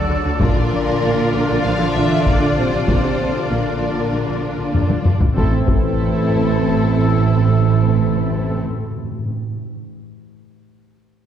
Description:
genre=cinematic, epic orchestral film score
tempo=97 BPM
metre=4/4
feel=straight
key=unclear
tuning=A4 = 440 Hz
part: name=warm symphonic violin section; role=second line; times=0.0-8.6 s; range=E4 to D5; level=-27 LUFS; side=left 3 dB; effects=none
part: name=warm symphonic viola section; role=accompaniment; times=0.0-8.6 s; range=D3 to D4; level=-26 LUFS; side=equal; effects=none
part: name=mellow French horn section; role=sustained chords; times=0.0-8.6 s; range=D3 to D4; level=-26 LUFS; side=left 2 dB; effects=none
part: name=clear trumpet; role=stabs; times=0.0-8.6 s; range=F4 to A4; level=-27 LUFS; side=equal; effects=none
part: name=dark symphonic double bass section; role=bass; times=0.1-8.6 s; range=A1 to D2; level=-25 LUFS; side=right 2 dB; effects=none
part: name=mellow tuba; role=bass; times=0.1-8.6 s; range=A1 to D2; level=-23 LUFS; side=right 3 dB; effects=none
part: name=warm symphonic violin section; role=melody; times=0.4-8.6 s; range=A4 to F5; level=-27 LUFS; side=left 4 dB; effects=none
part: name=warm trombone section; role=sustained chords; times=0.4-8.6 s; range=Bb2 to A3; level=-29 LUFS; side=right 3 dB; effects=none
part: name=rich symphonic cello section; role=bass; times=0.4-8.6 s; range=Bb2 to A3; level=-26 LUFS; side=right 2 dB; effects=none
part: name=taiko ensemble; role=drums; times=0.4-6.6 s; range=none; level=-19 LUFS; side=left 1 dB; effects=none
part: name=timpani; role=percussion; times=5.4-9.3 s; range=A2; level=-22 LUFS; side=right 4 dB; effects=none
room=wet scoring stage reverb, RT60 2.0 s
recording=heard from further back in the room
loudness=-15 LUFS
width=side -9 dB against mid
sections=0.0-5.4 A section; 5.4-7.8 B section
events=drum fill 4.7-5.4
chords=0.4 Bb; 5.4 Am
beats=| 0.41 1.02 1.64 2.26 | 2.88 3.50 4.12 4.74 | 5.36 5.98 6.60 7.22

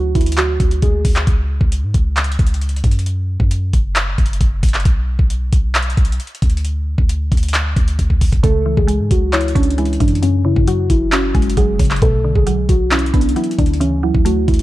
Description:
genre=hip hop, trap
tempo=134 BPM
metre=4/4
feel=half-time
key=unclear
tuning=A4 = 441 Hz
part: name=muted felt-like synth keys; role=melody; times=0.0-1.0, 8.4-14.6 s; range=C#4 to A4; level=-19 LUFS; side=equal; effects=chorus, low-pass filter, ping-pong delay
part: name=warm 808-style bass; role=bass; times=0.0-14.6 s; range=F#1 to G#2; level=-18 LUFS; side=equal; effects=none
part: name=trap drum kit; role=drums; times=0.2-14.6 s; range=handclaps, hi-hat, kick drum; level=-16 LUFS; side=equal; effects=none
part: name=mallet-like synth pluck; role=accompaniment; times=8.4-14.6 s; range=F#2 to C#5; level=-20 LUFS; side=right 1 dB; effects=chorus, low-pass filter
room=little or no reverb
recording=dark, warm production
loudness=-13 LUFS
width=side -16 dB against mid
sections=0.0-14.6 A section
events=drum fill 8.0-8.4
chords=0.0 D; 1.3 C#5; 3.1 N.C.; 4.9 Bm; 6.6 N.C.; 8.4 C#m; 10.2 F#sus2; 12.0 Bmadd9; 13.8 Dadd9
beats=0.38 0.82 | 1.27 1.72 2.17 2.62 | 3.06 3.51 3.96 4.41 | 4.85 5.30 5.75 6.20 | 6.64 7.09 7.54 7.99 | 8.44 8.88 9.33 9.78 | 10.23 10.68 11.12 11.57 | 12.02 12.47 12.91 13.36 | 13.81 14.26

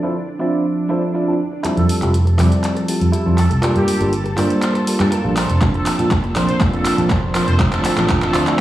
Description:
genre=filtered disco house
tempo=121 BPM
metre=4/4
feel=straight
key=F major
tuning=A4 = 441 Hz
part: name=bell-like tine electric piano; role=accompaniment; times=0.0-8.6 s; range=F3 to A5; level=-20 LUFS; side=right 1 dB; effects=phaser, vintage 12-bit sampler grit, sidechain pumping, low-pass filter
part: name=string machine, full ensemble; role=sustained chords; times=0.0-8.6 s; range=D4 to A5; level=-30 LUFS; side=equal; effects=ensemble chorus, sidechain pumping, low-pass filter
part: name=direct-recorded clean electric guitar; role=riff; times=0.0-8.6 s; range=D4 to D5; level=-27 LUFS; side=right 2 dB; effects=vintage 12-bit sampler grit, sidechain pumping, low-pass filter
part: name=fingered electric bass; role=bass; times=1.6-8.4 s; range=F1 to Bb2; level=-17 LUFS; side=equal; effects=tube saturation, sidechain pumping, low-pass filter
part: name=punchy analog drum machine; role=drums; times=1.6-8.6 s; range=handclaps, hi-hat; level=-23 LUFS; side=equal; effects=sidechain pumping on hats
part: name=clear horn section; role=melody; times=1.8-8.4 s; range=G4 to C5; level=-27 LUFS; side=right 1 dB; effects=sidechain pumping, low-pass filter, digital delay
part: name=electronic kick drum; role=drums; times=5.6-8.2 s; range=none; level=-18 LUFS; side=equal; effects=none
room=moderate plate reverb, RT60 1.1 s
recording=played on a big sound system in a bare room, large studio reverb, small room ambience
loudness=-15 LUFS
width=side -14 dB against mid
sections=0.0-1.6 A section; 1.6-8.6 B section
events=build-up 1.6-8.6; drum fill 1.6-8.6; filter sweep 1.6-8.6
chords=0.0 Dm9; 1.6 Fmaj9; 3.6 Gm9; 5.4 Bbmaj9; 7.6 Dm9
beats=0.16 0.65 1.15 | 1.65 2.14 2.64 3.13 | 3.63 4.12 4.62 5.12 | 5.61 6.11 6.61 7.10 | 7.60 8.09 8.59

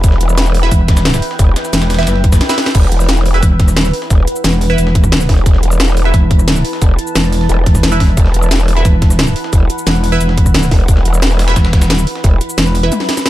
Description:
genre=dark technical drum and bass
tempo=177 BPM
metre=4/4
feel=straight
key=E minor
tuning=A4 = 440 Hz
part: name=deep dark ambient pad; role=sustained chords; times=0.0-13.3 s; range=E4 to B5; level=-21 LUFS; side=equal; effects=chorus, built-in reverb, sidechain pumping
part: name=growl bass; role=bass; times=0.0-12.4 s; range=E1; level=-12 LUFS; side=equal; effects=chorus, overdrive
part: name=breakbeat sampler-style drum kit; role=drums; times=0.0-13.3 s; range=hi-hat, snare drum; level=-26 LUFS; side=equal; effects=high-pass filter on hats, small room ambience, high-pass filter on snare, high-pass filter on room
part: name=drum and bass drum kit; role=drums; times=0.0-13.3 s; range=crash cymbal, hi-hat, rim click, shaker, snare drum, toms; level=-18 LUFS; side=equal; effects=overdrive, small room ambience
part: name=electronic kick drum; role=drums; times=0.0-12.3 s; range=none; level=-10 LUFS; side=equal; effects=overdrive, small room ambience
part: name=filtered dub chord stab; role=stabs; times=0.6-12.9 s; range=E4 to E5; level=-21 LUFS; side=right 4 dB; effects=phaser, tape echo
part: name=metallic wobble bass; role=bass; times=0.7-12.9 s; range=E1 to F#1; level=-13 LUFS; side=equal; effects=chorus
room=little or no reverb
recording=dark, warm production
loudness=-9 LUFS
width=side -15 dB against mid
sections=0.0-13.3 A section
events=break 2.4-2.7; drum fill 2.4-2.7, 12.9-13.3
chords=0.0 Emadd9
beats=| 0.04 0.38 0.71 1.05 | 1.39 1.73 2.07 2.41 | 2.75 3.09 3.43 3.77 | 4.10 4.44 4.78 5.12 | 5.46 5.80 6.14 6.48 | 6.82 7.16 7.49 7.83 | 8.17 8.51 8.85 9.19 | 9.53 9.87 10.21 10.54 | 10.88 11.22 11.56 11.90 | 12.24 12.58 12.92 13.26

